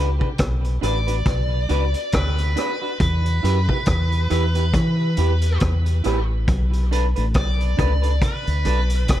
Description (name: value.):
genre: roots reggae.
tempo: 69 BPM.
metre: 4/4.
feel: swing 57% on 16ths.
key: B minor.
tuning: A4 = 440 Hz.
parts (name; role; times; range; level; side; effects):
clean electric guitar; accompaniment; 0.0-8.8 s; D4 to B4; -28 LUFS; right 3 dB; tape echo.
deep dub fingered electric bass; bass; 0.0-9.2 s; F#1 to E3; -20 LUFS; equal; none.
vintage drum kit; drums; 0.2-9.2 s; hi-hat, kick drum, rim click; -23 LUFS; equal; tape echo.
high-gain lead guitar; melody; 0.9-9.2 s; B4 to D5; -28 LUFS; equal; distortion, tape echo.
room: little or no reverb.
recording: echo-heavy mix.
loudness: -18 LUFS.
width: side -12 dB against mid.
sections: 0.0-6.5 A section; 6.5-9.2 B section.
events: none.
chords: 0.0 Bm; 3.0 Em; 6.5 Bm7.